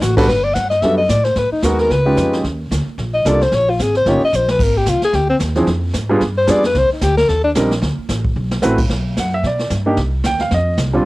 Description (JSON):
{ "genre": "jazz, small-group swing and bop", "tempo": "223 BPM", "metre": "4/4", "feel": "swing 58% on 8ths", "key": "unclear", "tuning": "A4 = 441 Hz", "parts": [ { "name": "breathy alto saxophone", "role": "melody", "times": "0.0-7.5 s", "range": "C4 to F#5", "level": "-16 LUFS", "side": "left 2 dB", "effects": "cassette tape" }, { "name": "upright bass", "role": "bass", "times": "0.0-11.0 s", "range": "G1 to B2", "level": "-19 LUFS", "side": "equal", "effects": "none" }, { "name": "jazz brush drum kit", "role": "drums", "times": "0.0-11.1 s", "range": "brushed snare drum, crash cymbal, hi-hat, kick drum, snare drum", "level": "-23 LUFS", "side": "right 1 dB", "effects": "none" }, { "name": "warm grand piano", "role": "accompaniment", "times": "0.2-11.0 s", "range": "F3 to G5", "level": "-17 LUFS", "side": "right 1 dB", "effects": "none" } ], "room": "light reverb", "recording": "home recording on cassette", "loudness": "-14 LUFS", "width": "side -19 dB against mid", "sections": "0.3-8.9 A section; 8.9-11.1 A section", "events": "alto saxophone solo 0.0-8.9; drum fill 4.3, 8.4", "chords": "0.3 Gmaj9; 1.4 Abm7; 1.9 C#9; 2.4 Ebmaj9#11; 3.5 Absus2; 4.1 Eb7; 4.6 Ab; 5.7 G7b9; 6.7 Cm9; 7.8 D13; 8.9 Gmaj7; 10.0 Cm; 10.5 F5" }